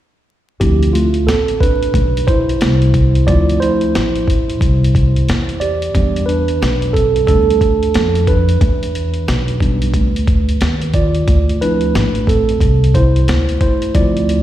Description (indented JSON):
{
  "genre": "hip hop, jazz-hop",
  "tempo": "90 BPM",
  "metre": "4/4",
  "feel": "swing 62% on 16ths",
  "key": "D dorian",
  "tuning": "A4 = 439 Hz",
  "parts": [
    { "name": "mellow tine electric piano", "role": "accompaniment", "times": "0.6-14.4 s", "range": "F3 to D5", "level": "-17 LUFS", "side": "right 2 dB", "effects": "slow stereo tremolo, slapback echo" },
    { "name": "upright bass", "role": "bass", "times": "0.6-14.4 s", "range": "A1 to F2", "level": "-15 LUFS", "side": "equal", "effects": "none" },
    { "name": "boom bap sampler-style drum kit", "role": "drums", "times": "0.6-14.4 s", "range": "hi-hat, kick drum, snare drum", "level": "-17 LUFS", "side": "equal", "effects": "none" }
  ],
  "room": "little or no reverb",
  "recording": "live gig heard through the venue's PA, recital hall reverb, vinyl crackle",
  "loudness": "-12 LUFS",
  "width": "side -12 dB against mid",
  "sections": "0.6-14.4 A section",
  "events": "tine electric piano solo 0.6-14.4",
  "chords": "0.6 Dm7; 5.9 Em7; 11.3 Dm7"
}